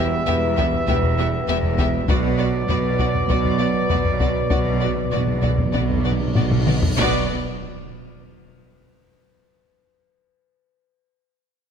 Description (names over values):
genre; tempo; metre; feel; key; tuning
cinematic, epic orchestral film score; 98 BPM; 4/4; straight; B minor; A4 = 440 Hz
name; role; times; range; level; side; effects
warm symphonic violin section; melody; 0.0-7.3 s; D5 to E5; -31 LUFS; left 5 dB; none
warm symphonic violin section; second line; 0.0-7.3 s; F#4 to G4; -32 LUFS; left 2 dB; none
clear symphonic viola section; accompaniment; 0.0-7.3 s; B3; -32 LUFS; right 2 dB; none
dark French horn section; sustained chords; 0.0-7.3 s; B3 to B4; -30 LUFS; left 6 dB; none
mellow trombone section; sustained chords; 0.0-7.3 s; B2 to G3; -29 LUFS; right 4 dB; none
warm trumpet section; stabs; 0.0-7.3 s; D5 to E5; -27 LUFS; left 1 dB; none
clear symphonic cello section; bass; 0.0-7.3 s; E2 to B2; -26 LUFS; right 3 dB; none
rich symphonic double bass section; bass; 0.0-7.3 s; E1 to B1; -26 LUFS; right 3 dB; none
taiko ensemble; drums; 0.3-8.2 s; none; -24 LUFS; left 2 dB; none
timpani; percussion; 2.1-7.3 s; B2; -26 LUFS; right 1 dB; none
cymbal swell and impact; sound effects; 6.0-9.5 s; none; -34 LUFS; left 2 dB; none
room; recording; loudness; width
moderate concert hall reverb, RT60 1.9 s; none; -18 LUFS; side -7 dB against mid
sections
0.0-7.0 A section; 7.0-9.5 B section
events
timpani fill 2.1-7.0; cymbal swell 6.0-7.0; drum fill 6.4-7.0; impact 7.0-9.5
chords
0.0 Em; 2.1 Bm; 7.0 N.C.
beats
0.28 0.88 1.48 | 2.08 2.69 3.29 3.90 | 4.51 5.12 5.74 6.36 | 6.98 7.61 8.24 8.87